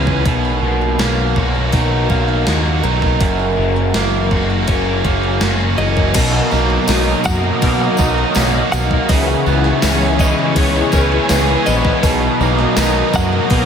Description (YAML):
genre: rock, shoegaze and dream pop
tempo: 82 BPM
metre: 4/4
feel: straight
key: B major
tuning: A4 = 438 Hz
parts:
  - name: picked twelve-string acoustic guitar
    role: arpeggios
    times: 0.0-13.7 s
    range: F#4 to C#5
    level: -24 LUFS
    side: left 6 dB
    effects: wide subtle chorus, ping-pong delay
  - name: biting overdriven guitar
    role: riff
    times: 0.0-13.7 s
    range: F#2 to G#4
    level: -19 LUFS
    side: right 8 dB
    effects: reverse reverb
  - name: crunchy overdriven guitar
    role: riff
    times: 0.0-13.7 s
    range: F#2 to F#4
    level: -21 LUFS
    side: left 8 dB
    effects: ensemble chorus
  - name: growling picked electric bass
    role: bass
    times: 0.0-13.7 s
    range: F#1 to B2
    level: -18 LUFS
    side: equal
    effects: overdrive
  - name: gated 80s digital drum machine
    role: drums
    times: 0.1-13.7 s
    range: crash cymbal, hi-hat, kick drum, snare drum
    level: -20 LUFS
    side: equal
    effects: gated reverb, gated reverb snare
  - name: direct-recorded clean electric guitar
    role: melody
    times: 5.8-13.7 s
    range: B4 to F#5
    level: -23 LUFS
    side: equal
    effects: tremolo, ping-pong delay
  - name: tambourine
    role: percussion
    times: 6.1-13.3 s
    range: none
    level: -31 LUFS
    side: left 6 dB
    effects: none
  - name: analog string pad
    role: sustained chords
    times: 6.2-13.7 s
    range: E3 to D#5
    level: -21 LUFS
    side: left 2 dB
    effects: ensemble chorus
room: wet huge ambient reverb, RT60 7.8 s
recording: dreamy mix soaked in reverb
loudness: -13 LUFS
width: side -7 dB against mid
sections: 0.0-6.2 A section; 6.2-13.7 A section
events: none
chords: 0.3 Bmaj7; 3.2 F#7; 6.2 Bmaj7; 9.1 C#m7; 12.0 Bmaj7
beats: | 0.26 0.99 1.73 2.47 | 3.21 3.94 4.68 5.42 | 6.15 6.89 7.62 8.36 | 9.09 9.82 10.56 11.29 | 12.03 12.77 13.50